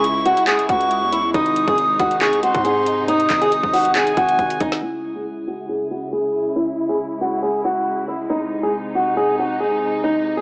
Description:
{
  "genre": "hip hop, trap",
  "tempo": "138 BPM",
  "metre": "4/4",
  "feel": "half-time",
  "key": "C# harmonic minor",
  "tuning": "A4 = 440 Hz",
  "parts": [
    { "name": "flamenco guitar", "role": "melody", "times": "0.0-10.4 s", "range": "D#4 to G#4", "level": "-18 LUFS", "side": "equal", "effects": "low-pass filter, cassette tape" },
    { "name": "breathy silver concert flute", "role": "second line", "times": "0.0-4.8 s", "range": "G#5 to D#6", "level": "-20 LUFS", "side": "equal", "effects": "cassette tape, tape echo" },
    { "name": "dark studio string section", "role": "sustained chords", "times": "0.0-10.4 s", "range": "B#2 to E4", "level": "-27 LUFS", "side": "equal", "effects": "low-pass filter, cassette tape" },
    { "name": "distorted 808-style bass", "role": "bass", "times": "0.0-4.8 s", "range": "G#1 to G#2", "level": "-28 LUFS", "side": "equal", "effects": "distortion" },
    { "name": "trap drum kit", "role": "drums", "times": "0.0-4.8 s", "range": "handclaps, hi-hat, kick drum, snare drum", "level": "-23 LUFS", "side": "equal", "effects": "vintage 12-bit sampler grit, cassette tape" }
  ],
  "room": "light reverb, small room ambience",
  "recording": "home recording on cassette, small speaker sound",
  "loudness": "-16 LUFS",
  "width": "side -31 dB against mid",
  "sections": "0.0-4.8 A section; 4.8-10.4 B section",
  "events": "drum fill 4.4-4.8; filter sweep 4.8-10.4",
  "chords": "0.0 C#m; 1.3 G#; 4.8 C#m; 8.3 G#"
}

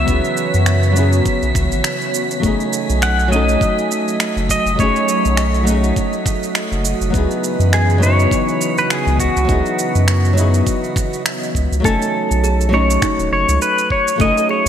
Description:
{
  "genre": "sunset chillout",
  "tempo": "102 BPM",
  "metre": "4/4",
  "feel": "swing 56% on 16ths",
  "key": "F# dorian",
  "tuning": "A4 = 440 Hz",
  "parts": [
    { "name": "pedal steel guitar", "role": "melody", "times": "0.0-14.7 s", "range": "F#4 to F#5", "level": "-20 LUFS", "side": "left 1 dB", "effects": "analog chorus, digital delay" },
    { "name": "flamenco guitar", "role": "accompaniment", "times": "0.0-14.7 s", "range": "F#3 to G#5", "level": "-21 LUFS", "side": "moving between left 4 dB and right 4 dB", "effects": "auto-pan, low-pass filter, digital delay" },
    { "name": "airy breathy pad", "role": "sustained chords", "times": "0.0-11.8 s", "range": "C#3 to G#5", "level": "-23 LUFS", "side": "equal", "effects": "chorus, phaser" },
    { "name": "round analog bass", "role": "bass", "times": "0.0-14.7 s", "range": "D#1 to F#2", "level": "-16 LUFS", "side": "equal", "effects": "none" },
    { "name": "wind-like tuned noise texture", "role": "texture", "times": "0.0-11.9 s", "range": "B6", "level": "-29 LUFS", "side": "right 1 dB", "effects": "built-in reverb, ensemble chorus" },
    { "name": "electronic kick drum", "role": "drums", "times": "0.1-14.3 s", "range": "none", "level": "-21 LUFS", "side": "equal", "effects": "studio reverb" },
    { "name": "electronic shaker and finger snaps", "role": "drums", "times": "0.1-14.5 s", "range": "none", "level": "-24 LUFS", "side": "right 3 dB", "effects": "overdrive, studio reverb" },
    { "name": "kalimba", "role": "arpeggios", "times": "11.8-14.7 s", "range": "D#4 to A4", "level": "-27 LUFS", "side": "right 2 dB", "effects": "digital delay" }
  ],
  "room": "moderate lush hall reverb, RT60 2.1 s",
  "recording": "bright 1980s-style digital production",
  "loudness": "-14 LUFS",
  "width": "side -9 dB against mid",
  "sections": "0.0-11.8 A section; 11.8-14.7 B section",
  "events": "filter sweep on nylon-string guitar 0.0-11.8",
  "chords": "0.0 C#m11; 2.4 F#m69; 7.1 C#m11; 11.8 F#m69"
}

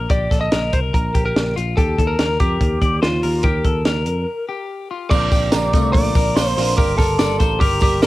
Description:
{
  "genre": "jangly indie pop",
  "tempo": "144 BPM",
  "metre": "4/4",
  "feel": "straight",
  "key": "Bb major",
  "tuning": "A4 = 440 Hz",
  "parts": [
    { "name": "electric guitar at the edge of break-up", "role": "arpeggios", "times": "0.0-8.1 s", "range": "A3 to D5", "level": "-25 LUFS", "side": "left 6 dB", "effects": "phaser, cassette tape" },
    { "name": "picked electric bass", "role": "bass", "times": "0.0-8.1 s", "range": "G1 to F2", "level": "-22 LUFS", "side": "equal", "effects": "none" },
    { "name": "lightly driven lead guitar", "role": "melody", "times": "0.1-8.1 s", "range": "F4 to Eb5", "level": "-22 LUFS", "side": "equal", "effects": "cassette tape" },
    { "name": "compact cocktail drum kit", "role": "drums", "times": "0.1-8.1 s", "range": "crash cymbal, hi-hat, kick drum, snare drum", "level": "-18 LUFS", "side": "equal", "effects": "cassette tape" },
    { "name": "glockenspiel with rubber mallets", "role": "second line", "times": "5.1-8.1 s", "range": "Bb5 to D6", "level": "-28 LUFS", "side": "right 7 dB", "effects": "cassette tape" },
    { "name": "warm upright piano", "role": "accompaniment", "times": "5.1-8.1 s", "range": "Bb3 to Bb4", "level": "-27 LUFS", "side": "right 9 dB", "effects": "cassette tape" },
    { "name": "tambourine", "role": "percussion", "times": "5.1-8.1 s", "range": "none", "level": "-36 LUFS", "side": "right 10 dB", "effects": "none" }
  ],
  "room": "little or no reverb",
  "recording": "home recording on cassette",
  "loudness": "-15 LUFS",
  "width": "side -17 dB against mid",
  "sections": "0.0-5.1 A section; 5.1-8.1 B section",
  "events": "break 4.3-5.1",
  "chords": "0.0 N.C.; 1.8 Ebadd9; 5.1 Bbadd9; 6.8 Gm"
}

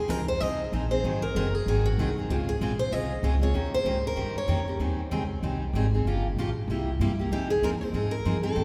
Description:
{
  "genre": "acoustic string swing (jazz manouche)",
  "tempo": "191 BPM",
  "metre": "4/4",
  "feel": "swing 60% on 8ths",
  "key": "F minor",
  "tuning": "A4 = 440 Hz",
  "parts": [
    { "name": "picked steel-string acoustic guitar", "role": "melody", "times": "0.0-4.7, 7.3-8.6 s", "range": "Gb4 to Eb5", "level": "-32 LUFS", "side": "equal", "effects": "none" },
    { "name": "picked steel-string acoustic guitar", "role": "accompaniment", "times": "0.1-8.6 s", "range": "C3 to Bb4", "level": "-33 LUFS", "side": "equal", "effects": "none" },
    { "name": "upright bass", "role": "bass", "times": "0.1-8.6 s", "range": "Gb1 to A2", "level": "-30 LUFS", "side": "equal", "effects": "none" }
  ],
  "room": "wet cathedral reverb, RT60 4.2 s",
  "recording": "recorded in a church or concert hall",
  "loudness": "-27 LUFS",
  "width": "mono",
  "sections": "0.0-8.6 A section",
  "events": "none",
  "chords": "0.0 Fm7; 1.0 Ab7; 2.3 Dbmaj7; 3.5 Eb7; 4.8 Abmaj7; 6.1 Gm7b5; 6.7 C7; 7.3 Fm7"
}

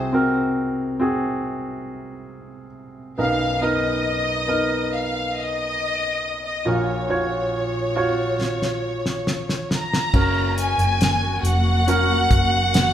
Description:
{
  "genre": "pop ballad",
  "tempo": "69 BPM",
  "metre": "4/4",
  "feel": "straight",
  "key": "unclear",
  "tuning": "A4 = 440 Hz",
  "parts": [
    { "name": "warm symphonic violin section", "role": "melody", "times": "0.0-12.9 s", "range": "C5 to Bb5", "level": "-23 LUFS", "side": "left 1 dB", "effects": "none" },
    { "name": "clear baby grand piano", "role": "accompaniment", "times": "0.0-12.9 s", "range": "Bb1 to Db5", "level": "-23 LUFS", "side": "equal", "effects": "none" },
    { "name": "damped 70s drum kit", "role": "drums", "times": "8.4-12.9 s", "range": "crash cymbal, hi-hat, kick drum, snare drum", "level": "-22 LUFS", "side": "equal", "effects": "none" },
    { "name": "dark studio string section", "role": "sustained chords", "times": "10.1-12.9 s", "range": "Gb3 to Gb4", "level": "-28 LUFS", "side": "left 1 dB", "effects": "none" },
    { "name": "vintage muted fingered electric bass", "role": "bass", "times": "10.1-12.9 s", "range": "F1 to Gb1", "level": "-21 LUFS", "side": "equal", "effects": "none" }
  ],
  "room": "wet large studio reverb, RT60 0.9 s",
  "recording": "band playing live in one room",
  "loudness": "-19 LUFS",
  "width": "side -10 dB against mid",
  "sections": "0.0-10.1 A section; 10.1-12.9 B section",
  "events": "drum fill 8.4-10.1",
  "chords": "0.0 Ab7/C; 3.2 Cbmaj7; 6.7 Gbmaj7/Bb; 10.1 Gbmaj7"
}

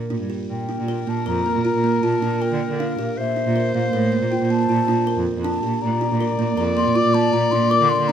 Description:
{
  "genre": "contemporary instrumental, chamber music in an uneven meter",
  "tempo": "158 BPM",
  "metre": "7/4",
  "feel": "straight",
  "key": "unclear",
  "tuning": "A4 = 440 Hz",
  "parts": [
    { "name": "mellow baroque flute", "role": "melody", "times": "0.0-8.1 s", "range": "Bb4 to D6", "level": "-24 LUFS", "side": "left 5 dB", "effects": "none" },
    { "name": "breathy clarinet", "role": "second line", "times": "0.0-8.1 s", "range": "D4 to D5", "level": "-25 LUFS", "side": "left 3 dB", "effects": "none" },
    { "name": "buzzing kalimba", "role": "arpeggios", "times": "0.1-8.1 s", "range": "Bb3 to Bb4", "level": "-23 LUFS", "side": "right 4 dB", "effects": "none" },
    { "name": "rich cello", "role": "bass", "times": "0.1-8.1 s", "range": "F2 to D3", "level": "-23 LUFS", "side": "right 2 dB", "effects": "none" }
  ],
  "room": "moderate studio reverb, RT60 0.5 s",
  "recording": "dark, warm production",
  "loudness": "-18 LUFS",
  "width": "side -9 dB against mid",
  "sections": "0.5-8.1 A section",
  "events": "none",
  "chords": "0.5 Gm7; 3.2 Bbmaj9; 5.8 Gm7 (rootless)"
}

